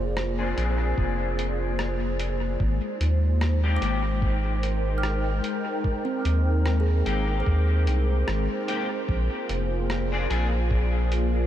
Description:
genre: ambient dub.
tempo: 74 BPM.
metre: 4/4.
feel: swing 56% on 16ths.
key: unclear.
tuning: A4 = 441 Hz.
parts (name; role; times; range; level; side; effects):
warm analog pad; sustained chords; 0.0-11.5 s; Ab3 to G5; -30 LUFS; equal; chorus.
kalimba; arpeggios; 0.0-10.3 s; C4 to F6; -35 LUFS; right 3 dB; diffuse ambient delay.
round analog bass; bass; 0.0-11.5 s; F1 to Eb2; -24 LUFS; equal; none.
lo-fi sampler-style drum kit; drums; 0.2-11.3 s; hi-hat, rim click; -38 LUFS; equal; dub echo.
electric guitar at the edge of break-up; stabs; 0.4-10.5 s; Bb3 to Ab4; -33 LUFS; left 4 dB; ensemble chorus, low-pass filter, dub echo.
electronic kick drum; drums; 1.0-10.9 s; none; -26 LUFS; equal; none.
room: light reverb.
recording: none.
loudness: -23 LUFS.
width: side -11 dB against mid.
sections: 0.0-11.5 A section.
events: filter sweep on clean electric guitar 0.0-11.5.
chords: 0.0 Bb9; 2.6 Abmaj9; 9.1 Bb9.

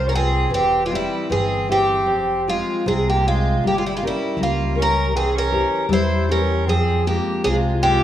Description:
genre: fado-style ballad.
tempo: 78 BPM.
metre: 2/4.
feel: rubato.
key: F harmonic minor.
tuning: A4 = 438 Hz.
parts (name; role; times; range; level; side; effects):
picked twelve-string acoustic guitar; melody; 0.0-8.0 s; E4 to C5; -20 LUFS; equal; none.
accordion; second line; 0.0-8.0 s; G3 to E4; -26 LUFS; right 3 dB; none.
nylon-string guitar; accompaniment; 0.0-8.0 s; C3 to G5; -24 LUFS; left 3 dB; none.
upright bass; bass; 0.0-8.0 s; E1 to F2; -23 LUFS; equal; none.
room: moderate recital hall reverb, RT60 1.5 s.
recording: small room ambience.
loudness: -17 LUFS.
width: side -11 dB against mid.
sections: 0.0-8.0 A section.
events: none.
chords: 0.0 Fm; 0.5 C/E; 2.1 Fm; 3.6 Gdim; 5.1 C; 6.7 Fm.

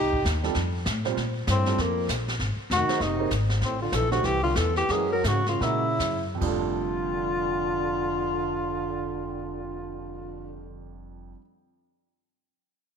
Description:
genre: jazz, small-group swing and bop.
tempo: 137-197 BPM.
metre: 4/4.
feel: swing 61% on 8ths.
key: F major.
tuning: A4 = 440 Hz.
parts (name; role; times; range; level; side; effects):
breathy tenor saxophone; melody; 0.0-10.7 s; Bb3 to Bb4; -28 LUFS; left 3 dB; none.
breathy trombone; second line; 0.0-10.7 s; F2 to Eb4; -33 LUFS; right 7 dB; none.
upright bass; bass; 0.0-11.3 s; F1 to Bb2; -30 LUFS; left 1 dB; none.
jazz brush drum kit; drums; 0.1-6.8 s; brushed snare drum, crash cymbal, hi-hat, kick drum, snare drum; -31 LUFS; equal; none.
warm grand piano; accompaniment; 0.4-11.4 s; F2 to C5; -34 LUFS; right 9 dB; none.
room: moderate echo chamber reverb, RT60 1.9 s, small room ambience.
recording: 1960s-style stereo.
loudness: -24 LUFS.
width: side -6 dB against mid.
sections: 0.0-1.2 A section; 1.2-6.4 B section; 6.4-9.9 C section.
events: slowing down 3.6-6.4.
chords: 0.0 Cm; 0.6 Fadd9; 1.2 Bbsus2; 2.4 Ab7; 3.6 D9sus4; 4.9 Gb7; 6.4 F6.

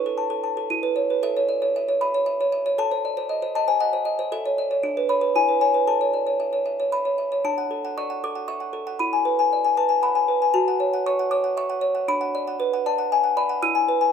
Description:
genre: classical, lullaby for music box.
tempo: 117 BPM.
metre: 3/4.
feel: straight.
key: A major.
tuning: A4 = 442 Hz.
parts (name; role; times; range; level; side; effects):
music box; solo; 0.0-14.1 s; D4 to E6; -20 LUFS; left 1 dB; none.
room: moderate studio ambience, RT60 0.5 s.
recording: none.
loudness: -20 LUFS.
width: side -7 dB against mid.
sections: 0.0-7.5 A section; 7.5-14.1 B section.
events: none.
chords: 0.0 A/E; 0.7 E5; 1.2 A; 2.8 Adim7; 4.3 A; 4.8 Bm/D; 5.3 E; 5.9 A; 7.5 D; 9.0 E7; 10.5 F#m; 12.1 Bm/D; 13.6 E.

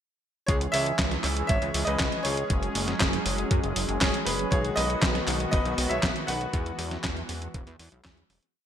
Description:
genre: italo disco.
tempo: 119 BPM.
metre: 4/4.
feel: straight.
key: unclear.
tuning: A4 = 440 Hz.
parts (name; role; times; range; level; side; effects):
bright grand piano; melody; 0.5-7.8 s; C#4 to F#5; -30 LUFS; equal; ping-pong delay.
warm analog pad; sustained chords; 0.5-8.5 s; D#3 to G#4; -32 LUFS; equal; chorus, tremolo.
chorused synth bass; bass; 0.5-8.4 s; E1 to F#2; -31 LUFS; equal; none.
clean 12-bit digital drum machine; drums; 0.5-8.5 s; handclaps, hi-hat, snare drum; -29 LUFS; equal; gated reverb.
electronic kick drum; drums; 0.5-8.1 s; none; -28 LUFS; equal; none.
room: moderate lush hall reverb, RT60 1.7 s.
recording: bright 1980s-style digital production.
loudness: -24 LUFS.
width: side -9 dB against mid.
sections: 0.5-8.6 chorus.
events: fade-out 5.9-8.6.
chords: 0.5 C#m; 2.5 F#sus2; 4.5 B6; 6.5 Eadd9.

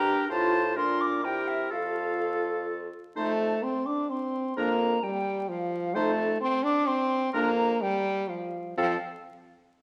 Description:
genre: quick classical-period movement for wind quintet.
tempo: 127 BPM.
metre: 3/4.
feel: straight.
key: F major.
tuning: A4 = 440 Hz.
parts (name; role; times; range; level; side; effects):
silver concert flute; melody; 0.0-9.0 s; E5 to D6; -34 LUFS; equal; none.
warm oboe; second line; 0.0-9.0 s; A4 to C5; -36 LUFS; equal; none.
mellow clarinet; accompaniment; 0.0-9.0 s; C4 to F4; -37 LUFS; equal; none.
warm French horn; accompaniment; 0.0-9.0 s; F3 to A4; -31 LUFS; equal; none.
warm bassoon; bass; 0.0-9.0 s; F2 to C3; -36 LUFS; equal; none.
room: wet recital hall reverb, RT60 1.4 s.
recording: vinyl crackle.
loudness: -28 LUFS.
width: mono.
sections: 0.0-3.2 A section; 3.2-8.8 B section; 8.8-9.8 C section.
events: none.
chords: 0.3 F/A; 0.8 Bb; 1.2 C7; 1.7 F; 4.6 Bb5/F; 6.0 F; 7.3 Bb5/F; 8.8 F5.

